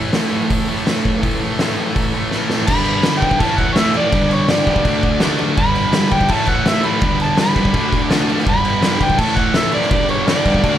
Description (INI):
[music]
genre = garage rock duo or trio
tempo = 166 BPM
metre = 4/4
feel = straight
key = unclear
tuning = A4 = 441 Hz
[part]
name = overdriven combo organ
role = sustained chords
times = 0.0-10.8 s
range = E4 to A5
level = -29 LUFS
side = equal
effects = none
[part]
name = thick fuzz guitar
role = riff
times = 0.0-10.8 s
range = G2 to D4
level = -18 LUFS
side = equal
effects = distortion
[part]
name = oversized low-tuned drum kit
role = drums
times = 0.1-10.7 s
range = crash cymbal, hi-hat, kick drum, snare drum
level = -18 LUFS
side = equal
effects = none
[part]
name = overdriven harmonica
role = melody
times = 2.7-10.8 s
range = C#5 to B5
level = -19 LUFS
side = equal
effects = none
[sound]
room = moderate studio reverb, RT60 0.5 s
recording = none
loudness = -14 LUFS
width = side -11 dB against mid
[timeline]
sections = 0.0-2.7 A section; 2.7-10.8 B section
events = drum fill 2.3-2.7; transistor combo organ fill 7.9-8.5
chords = 0.0 A; 2.7 G; 3.4 A; 4.1 G; 4.9 D; 5.6 G; 6.3 A; 7.0 G; 7.7 D; 8.5 G; 9.2 A; 9.9 G